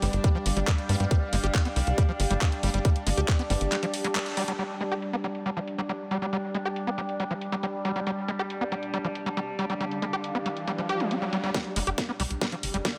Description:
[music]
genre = psychedelic trance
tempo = 138 BPM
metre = 4/4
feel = straight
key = unclear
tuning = A4 = 440 Hz
[part]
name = vowel-sweep wobble bass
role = second line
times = 0.0-3.6 s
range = B3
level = -44 LUFS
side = equal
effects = none
[part]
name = overtone-sweeping drone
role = sustained chords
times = 0.0-13.0 s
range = G3 to D4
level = -37 LUFS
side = equal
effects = chorus, built-in reverb, vintage 12-bit sampler grit, sidechain pumping
[part]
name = screaming distorted acid line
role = riff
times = 0.0-12.9 s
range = F3 to G4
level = -34 LUFS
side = equal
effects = distortion, chorus, sidechain pumping, dub echo
[part]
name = tight sequencer bass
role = bass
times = 0.0-3.7, 11.8-12.8 s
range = G1 to G2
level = -29 LUFS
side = equal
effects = none
[part]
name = garage drum kit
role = drums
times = 0.0-12.9 s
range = crash cymbal, handclaps, hi-hat, snare drum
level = -36 LUFS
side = equal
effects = low-pass filter on hats, low-pass filter on snare, low-pass filter on cymbals
[part]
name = warbly tape-like pad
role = texture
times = 0.0-13.0 s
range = G4 to G5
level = -38 LUFS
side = equal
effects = chorus, built-in reverb, sidechain pumping
[part]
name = electronic kick drum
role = drums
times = 0.2-3.4, 11.5-12.9 s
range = none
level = -27 LUFS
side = equal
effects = high-pass filter on kick
[part]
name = riser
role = sound effects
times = 9.4-13.0 s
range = none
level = -41 LUFS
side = equal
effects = none
[sound]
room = moderate lush hall reverb, RT60 2.4 s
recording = none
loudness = -28 LUFS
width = mono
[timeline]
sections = 0.0-4.6 A section; 4.6-11.5 B section; 11.5-13.0 C section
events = drop 0.0-4.6; band accent 4.2; riser 9.4-11.5; build-up 11.5-13.0; drum fill 11.5-13.0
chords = 0.0 G5

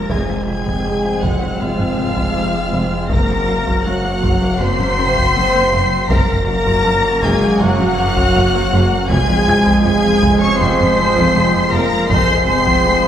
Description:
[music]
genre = cinematic, hybrid orchestral and electronic film score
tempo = 80 BPM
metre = 4/4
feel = straight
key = F phrygian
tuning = A4 = 435 Hz
[part]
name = warm symphonic violin section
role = melody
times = 0.0-13.1 s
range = F6 to Db7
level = -22 LUFS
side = left 2 dB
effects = none
[part]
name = warm symphonic violin section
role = second line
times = 0.0-13.1 s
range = F5 to Db6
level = -22 LUFS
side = left 2 dB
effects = none
[part]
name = warm symphonic viola section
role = accompaniment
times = 0.0-13.1 s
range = F4 to Db5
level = -21 LUFS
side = right 2 dB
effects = none
[part]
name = dark French horn section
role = sustained chords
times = 0.0-13.1 s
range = F3 to Db4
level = -21 LUFS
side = left 1 dB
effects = none
[part]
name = glassy FM pad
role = sustained chords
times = 0.0-13.1 s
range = Db3 to C5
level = -26 LUFS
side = equal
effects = ensemble chorus, built-in reverb
[part]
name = mellow trombone section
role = sustained chords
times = 0.0-13.1 s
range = F3 to C4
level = -24 LUFS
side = right 1 dB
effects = none
[part]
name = phased detuned saw bass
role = bass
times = 0.0-13.1 s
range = F1 to Gb1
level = -26 LUFS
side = equal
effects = phaser
[part]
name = felt-muted upright piano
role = texture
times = 0.0-13.1 s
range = C5 to Ab6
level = -28 LUFS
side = left 1 dB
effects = none
[part]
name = thumb-piano-like synth pluck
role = arpeggios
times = 0.1-13.1 s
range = F3 to Gb4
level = -26 LUFS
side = equal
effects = none
[part]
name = rich symphonic cello section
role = bass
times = 0.1-13.1 s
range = F2 to Gb2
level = -23 LUFS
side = right 1 dB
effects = none
[part]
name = rich symphonic double bass section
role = bass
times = 0.1-12.9 s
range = F1 to Gb1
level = -23 LUFS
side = right 1 dB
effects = none
[part]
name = taiko ensemble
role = drums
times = 0.1-13.1 s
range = none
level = -22 LUFS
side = equal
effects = none
[sound]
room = wet scoring stage reverb, RT60 1.5 s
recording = recorded in a church or concert hall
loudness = -13 LUFS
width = side -9 dB against mid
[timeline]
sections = 0.0-13.1 A section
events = none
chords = 0.0 Fm; 3.1 Gb; 9.1 Fm

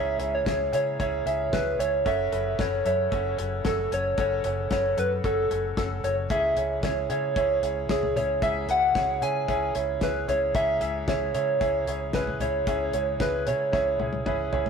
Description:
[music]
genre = piano-driven pop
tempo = 113 BPM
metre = 4/4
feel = straight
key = unclear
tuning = A4 = 440 Hz
[part]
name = soft struck synth lead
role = melody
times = 0.0-14.5 s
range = G#4 to G#5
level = -26 LUFS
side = left 1 dB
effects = chorus
[part]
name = bright upright piano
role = accompaniment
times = 0.0-14.7 s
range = G#2 to E5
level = -28 LUFS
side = right 3 dB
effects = none
[part]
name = vintage muted fingered electric bass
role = bass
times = 0.0-14.7 s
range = F#1 to C#3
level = -34 LUFS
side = left 1 dB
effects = none
[part]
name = damped 70s drum kit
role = drums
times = 0.2-14.7 s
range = hi-hat, kick drum, snare drum, toms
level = -31 LUFS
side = left 1 dB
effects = none
[sound]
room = light reverb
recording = rough rehearsal-room recording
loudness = -23 LUFS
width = side -6 dB against mid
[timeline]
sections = 0.0-14.7 A section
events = drum fill 13.7-14.7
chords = 0.0 C#m; 2.1 F#m; 6.3 C#m

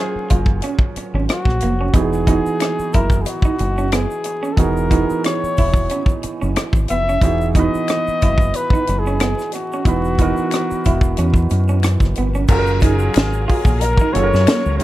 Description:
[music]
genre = R&B, neo-soul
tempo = 91 BPM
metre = 4/4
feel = swing 55% on 16ths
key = unclear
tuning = A4 = 445 Hz
[part]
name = warm flugelhorn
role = melody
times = 0.0-14.8 s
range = F#4 to E5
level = -22 LUFS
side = left 2 dB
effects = none
[part]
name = warm concert grand piano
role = accompaniment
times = 0.0-14.8 s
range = E3 to C#5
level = -23 LUFS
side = right 5 dB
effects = none
[part]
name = deep dub fingered electric bass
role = bass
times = 0.2-14.8 s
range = E1 to F#2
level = -19 LUFS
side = equal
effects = none
[part]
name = electric guitar through a small old amp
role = second line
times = 0.3-14.6 s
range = A#3 to E#4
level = -26 LUFS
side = right 4 dB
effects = spring reverb
[part]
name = tight funk drum kit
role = drums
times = 0.3-14.8 s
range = crash cymbal, hi-hat, kick drum, rim click, snare drum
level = -17 LUFS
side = equal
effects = none
[part]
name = egg shaker and finger snaps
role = percussion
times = 1.9-14.8 s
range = none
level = -36 LUFS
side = left 9 dB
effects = none
[part]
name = tonewheel organ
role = sustained chords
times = 12.5-14.8 s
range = F#3 to A#4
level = -30 LUFS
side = left 1 dB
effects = fast rotary speaker, chorus vibrato
[sound]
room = small room ambience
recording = dark, warm production, vinyl crackle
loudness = -15 LUFS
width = side -15 dB against mid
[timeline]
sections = 0.0-12.5 A section; 12.5-14.8 B section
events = none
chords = 0.0 F#maj9; 1.9 Emaj9; 12.5 F#maj9

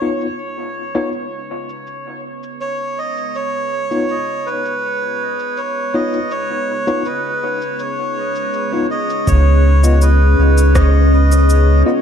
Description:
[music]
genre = ambient dub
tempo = 81 BPM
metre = 4/4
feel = straight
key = Db mixolydian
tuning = A4 = 439 Hz
[part]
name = deep dark ambient pad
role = sustained chords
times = 0.0-12.0 s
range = Db4 to Eb5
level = -23 LUFS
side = equal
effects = chorus, built-in reverb
[part]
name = mellow tine electric piano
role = stabs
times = 0.0-12.0 s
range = Cb4 to Eb5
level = -23 LUFS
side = left 2 dB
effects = medium tremolo, dub echo
[part]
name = electronic cabasa and rim click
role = drums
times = 0.2-11.7 s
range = none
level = -27 LUFS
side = equal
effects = overdrive, low-pass filter on snare, low-pass filter on perc, low-pass filter on room, dub echo
[part]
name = melodica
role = melody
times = 2.6-11.8 s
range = Cb5 to Eb5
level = -20 LUFS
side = right 1 dB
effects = vintage 12-bit sampler grit, dub echo
[part]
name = warm sub bass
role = bass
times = 9.3-11.8 s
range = Db2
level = -10 LUFS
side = equal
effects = none
[part]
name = electronic kick drum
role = drums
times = 9.3-10.9 s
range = none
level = -16 LUFS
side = equal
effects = none
[sound]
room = light reverb, digital ambience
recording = none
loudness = -14 LUFS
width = side -8 dB against mid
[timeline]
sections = 0.0-9.3 A section; 9.3-12.0 B section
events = filter sweep on ambient pad 0.0-9.3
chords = 0.0 Db9

